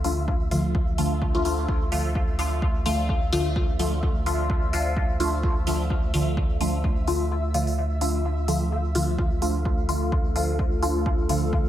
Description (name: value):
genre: dub techno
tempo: 128 BPM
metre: 4/4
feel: swing 55% on 16ths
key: D minor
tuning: A4 = 439 Hz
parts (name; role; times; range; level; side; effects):
- filtered dub chord stab; stabs; 0.0-11.5 s; D3 to F4; -26 LUFS; left 1 dB; phaser, sidechain pumping, dub echo
- warm sub bass; bass; 0.0-11.7 s; D2; -27 LUFS; equal; sidechain pumping
- electronic hi-hat; drums; 0.0-11.4 s; none; -35 LUFS; right 1 dB; none
- flickering grainy texture; texture; 0.0-11.7 s; E5 to F5; -38 LUFS; right 1 dB; built-in reverb, lush chorus, sidechain pumping
- electronic kick drum; drums; 0.3-11.6 s; none; -26 LUFS; equal; none
- warbly tape-like pad; sustained chords; 9.4-11.7 s; A3 to A4; -32 LUFS; left 2 dB; chorus, built-in reverb, sidechain pumping
room: moderate lush hall reverb, RT60 1.8 s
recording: dreamy mix soaked in reverb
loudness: -22 LUFS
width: side -12 dB against mid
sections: 0.0-11.7 A section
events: kick drops out 7.3-9.2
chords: 0.0 Dm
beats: 0.28 0.75 1.22 | 1.69 2.15 2.62 3.09 | 3.56 4.03 4.50 4.97 | 5.43 5.90 6.37 6.84 | 7.31 7.78 8.25 8.72 | 9.19 9.65 10.12 10.59 | 11.06 11.53